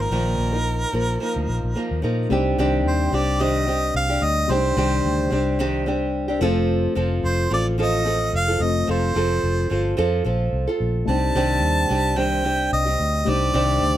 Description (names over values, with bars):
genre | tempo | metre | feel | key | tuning
acoustic pop | 110 BPM | 4/4 | swing 55% on 16ths | C dorian | A4 = 440 Hz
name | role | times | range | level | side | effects
clear harmonica | melody | 0.0-14.0 s | Bb4 to A5 | -24 LUFS | right 1 dB | none
nylon-string guitar | accompaniment | 0.0-14.0 s | Bb2 to Bb4 | -23 LUFS | right 1 dB | none
vintage muted fingered electric bass | bass | 0.0-14.0 s | F1 to Bb2 | -23 LUFS | equal | none
felt-muted upright piano | accompaniment | 2.3-14.0 s | G3 to C5 | -30 LUFS | left 7 dB | none
room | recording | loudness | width
light reverb | close, detailed microphones | -19 LUFS | side -12 dB against mid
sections
0.0-2.3 A section; 2.3-14.0 B section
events
none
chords
0.0 Bbsus4; 2.3 Cmadd9; 6.4 F; 11.1 Cmadd9